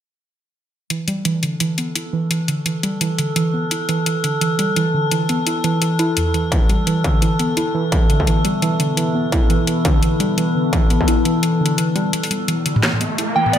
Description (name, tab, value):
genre	half-time drum and bass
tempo	171 BPM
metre	4/4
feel	swing 59% on 16ths, half-time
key	E minor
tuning	A4 = 440 Hz
part	warbly dusty pluck	arpeggios	0.9-13.6 s	E2 to E4	-19 LUFS	right 1 dB	chorus, dub echo
part	drum and bass drum kit	drums	0.9-13.6 s	hi-hat, snare drum, toms	-21 LUFS	left 2 dB	overdrive, studio reverb
part	metallic inharmonic drone	texture	2.0-13.6 s	A4	-24 LUFS	equal	chorus, built-in reverb
part	deep dark ambient pad	sustained chords	7.8-13.6 s	B3 to B5	-24 LUFS	left 4 dB	chorus, built-in reverb, sidechain pumping
part	electronic kick drum	drums	6.5-11.1 s	none	-17 LUFS	equal	distortion, studio reverb
part	riser	sound effects	12.5-13.6 s	none	-25 LUFS	right 1 dB	none
part	soft synth bell	melody	13.4-13.6 s	D5 to G5	-15 LUFS	right 1 dB	chorus, vintage 12-bit sampler grit
room	moderate echo chamber reverb, RT60 1.4 s, digital ambience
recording	none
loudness	-16 LUFS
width	side -10 dB against mid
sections	0.9-12.1 A section; 12.1-13.6 B section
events	filter sweep on synth pluck 0.9-12.1, 12.1-13.6; build-up 12.1-13.6; filter sweep on ambient pad 12.1-13.6; riser 12.5-13.6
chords	0.9 E5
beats	| 0.90 1.25 1.61 1.96 | 2.31 2.66 3.01 3.36 | 3.71 4.06 4.41 4.76 | 5.11 5.46 5.82 6.17 | 6.52 6.87 7.22 7.57 | 7.92 8.27 8.62 8.97 | 9.32 9.68 10.03 10.38 | 10.73 11.08 11.43 11.78 | 12.13 12.48 12.83 13.18 | 13.54